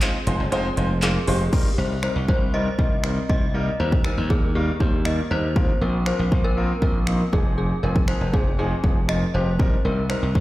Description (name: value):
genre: dance-pop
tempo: 119 BPM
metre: 4/4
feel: straight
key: unclear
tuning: A4 = 442 Hz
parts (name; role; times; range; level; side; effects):
- clear baby grand piano; accompaniment; 0.0-10.4 s; F3 to C5; -28 LUFS; equal; sidechain pumping
- house drum kit; drums; 0.0-10.4 s; crash cymbal, finger snaps, handclaps, hi-hat, kick drum; -22 LUFS; equal; none
- slap bass; bass; 0.3-10.4 s; F1 to Eb2; -23 LUFS; equal; sidechain pumping
- synth chime; melody; 1.0-10.4 s; G4 to Eb5; -28 LUFS; left 1 dB; ensemble chorus
room: digital ambience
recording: played on a big sound system in a bare room, stone room reverb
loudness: -19 LUFS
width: side -16 dB against mid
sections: 0.0-1.5 A section; 1.5-10.4 B section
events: drop 0.0-1.5; kick muted 0.5-1.5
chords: 0.0 Fm7; 1.5 Cm7; 5.6 Bbsus2; 7.3 Fm7; 9.6 Cm7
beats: 0.02 0.52 1.02 | 1.53 2.03 2.54 3.04 | 3.54 4.05 4.55 5.06 | 5.56 6.07 6.57 7.07 | 7.58 8.08 8.59 9.09 | 9.60 10.10